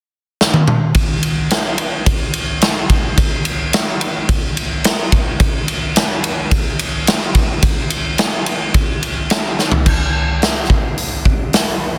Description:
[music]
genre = rock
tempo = 108 BPM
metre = 4/4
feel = straight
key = none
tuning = none
[part]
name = big rock drum kit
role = drums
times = 0.4-11.7 s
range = crash cymbal, hi-hat, kick drum, ride cymbal, snare drum, toms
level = -16 LUFS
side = equal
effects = soft clipping on snare
[sound]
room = light reverb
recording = dense, heavily limited modern master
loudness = -16 LUFS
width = mono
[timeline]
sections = 0.9-9.9 A section; 9.9-12.0 B section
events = drum fill 0.4-0.9, 9.6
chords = none

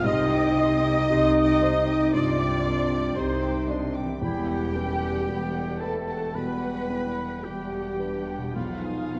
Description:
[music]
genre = cinematic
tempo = 57 BPM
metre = 4/4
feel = rubato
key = unclear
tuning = A4 = 440 Hz
[part]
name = rich studio violin section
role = melody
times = 0.0-9.2 s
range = E#5 to Eb6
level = -43 LUFS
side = equal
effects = none
[part]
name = clear clarinet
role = second line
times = 0.0-9.2 s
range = G3 to E#4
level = -34 LUFS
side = equal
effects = none
[part]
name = mellow flute section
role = second line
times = 0.0-9.2 s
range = E#5 to Eb6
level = -40 LUFS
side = equal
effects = none
[part]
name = warm oboe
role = second line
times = 0.0-9.2 s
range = E#4 to Eb5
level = -39 LUFS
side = equal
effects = none
[part]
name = warm studio violin section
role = second line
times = 0.0-9.2 s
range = Eb5 to D#6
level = -42 LUFS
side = equal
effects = none
[part]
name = felt-muted upright piano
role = accompaniment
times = 0.0-9.2 s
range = B1 to D5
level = -34 LUFS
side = equal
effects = none
[part]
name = dark French horn section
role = sustained chords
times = 0.0-9.2 s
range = E#3 to Eb4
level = -32 LUFS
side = equal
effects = none
[part]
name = concert harp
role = arpeggios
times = 0.0-9.2 s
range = B2 to D#5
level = -42 LUFS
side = equal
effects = none
[part]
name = rich studio viola section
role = accompaniment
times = 0.1-9.2 s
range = E#4 to Eb5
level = -32 LUFS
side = equal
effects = none
[part]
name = rich studio cello section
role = bass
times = 0.1-9.2 s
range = E2 to C3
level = -34 LUFS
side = equal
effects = none
[part]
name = rich studio double bass section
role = bass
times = 0.1-9.2 s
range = E1 to C2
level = -36 LUFS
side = equal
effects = none
[sound]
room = wet scoring stage reverb, RT60 1.7 s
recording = worn, warbling old tape, cassette tape, warbly pitch drift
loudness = -25 LUFS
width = mono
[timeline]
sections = 0.0-9.2 A section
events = none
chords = 0.1 Cmadd9; 4.2 Emadd9; 8.6 B6

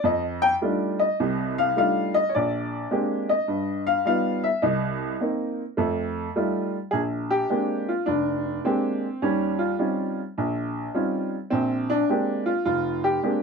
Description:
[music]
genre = solo jazz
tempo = 105 BPM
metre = 4/4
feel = swing 67% on 8ths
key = Bb mixolydian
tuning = A4 = 440 Hz
[part]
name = warm upright piano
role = solo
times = 0.0-13.4 s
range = F1 to G5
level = -22 LUFS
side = equal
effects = none
[sound]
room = light reverb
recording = close, detailed microphones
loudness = -22 LUFS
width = side -5 dB against mid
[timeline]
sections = 0.0-6.9 A section; 6.9-13.4 B section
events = upright piano solo 0.0-6.9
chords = 0.0 F13; 2.3 Bb13; 3.5 G7b13; 4.6 Cm7; 5.8 F9; 6.9 Bb13; 9.2 Eb13; 11.5 Bb13

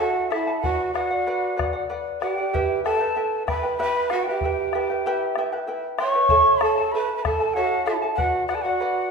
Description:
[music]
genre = andean folk, Andean ensemble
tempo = 95 BPM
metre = 3/4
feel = straight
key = unclear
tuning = A4 = 436 Hz
[part]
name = mellow quena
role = melody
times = 0.0-9.1 s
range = E5 to C#6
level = -24 LUFS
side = left 1 dB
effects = none
[part]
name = breathy hollow large pan pipes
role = second line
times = 0.0-9.1 s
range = E4 to C#5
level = -26 LUFS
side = right 5 dB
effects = none
[part]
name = charango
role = accompaniment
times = 0.0-9.1 s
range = E4 to A5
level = -26 LUFS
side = left 1 dB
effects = none
[part]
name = bombo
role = percussion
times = 0.3-8.7 s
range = none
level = -30 LUFS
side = left 3 dB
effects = none
[sound]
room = wet recital hall reverb, RT60 1.4 s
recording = minimal, uncompressed stereo recording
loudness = -20 LUFS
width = side -5 dB against mid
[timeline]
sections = 0.0-9.1 A section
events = none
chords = 0.0 A; 0.6 Bm; 2.5 Em; 6.3 A; 8.2 Bm

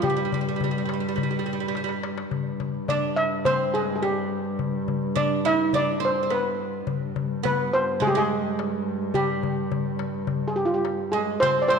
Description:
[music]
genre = Turkish makam ensemble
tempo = 105 BPM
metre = 4/4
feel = straight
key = G makam hicaz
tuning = A4 = 440 Hz
[part]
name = steel pan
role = melody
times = 0.0-11.8 s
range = F4 to E5-40c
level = -24 LUFS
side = equal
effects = none
[part]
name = oud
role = second line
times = 0.0-11.8 s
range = G3 to E4-40c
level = -29 LUFS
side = right 7 dB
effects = none
[part]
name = rich double bass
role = drone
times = 0.0-11.8 s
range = G2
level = -30 LUFS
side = right 1 dB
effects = stereo widening
[part]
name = darbuka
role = percussion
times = 0.0-11.6 s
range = none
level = -30 LUFS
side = left 9 dB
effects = none
[sound]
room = wet echo chamber reverb, RT60 2.1 s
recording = 1960s-style stereo with parts hard left and right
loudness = -23 LUFS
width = side -6 dB against mid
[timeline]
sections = 0.0-11.4 A section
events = drum fill 1.7-2.3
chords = none

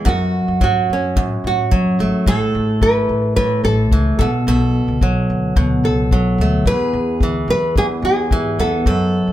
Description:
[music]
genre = acoustic pop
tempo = 109 BPM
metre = 4/4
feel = straight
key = unclear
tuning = A4 = 436 Hz
[part]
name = nylon-string guitar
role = melody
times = 0.0-9.3 s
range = C#4 to B4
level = -20 LUFS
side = right 1 dB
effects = plate reverb
[part]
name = picked steel-string acoustic guitar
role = accompaniment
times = 0.0-9.3 s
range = E2 to A4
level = -18 LUFS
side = right 1 dB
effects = none
[part]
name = upright bass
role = bass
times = 0.1-9.3 s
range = G#1 to A2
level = -22 LUFS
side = equal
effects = none
[part]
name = kick drum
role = drums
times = 0.1-9.0 s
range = none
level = -18 LUFS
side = left 1 dB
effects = none
[sound]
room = wet small room reverb, RT60 0.5 s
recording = heard from further back in the room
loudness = -14 LUFS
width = side -13 dB against mid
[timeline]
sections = 0.0-9.3 A section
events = none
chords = 0.1 F#m; 2.3 Asus2; 4.2 Bm7; 6.7 E

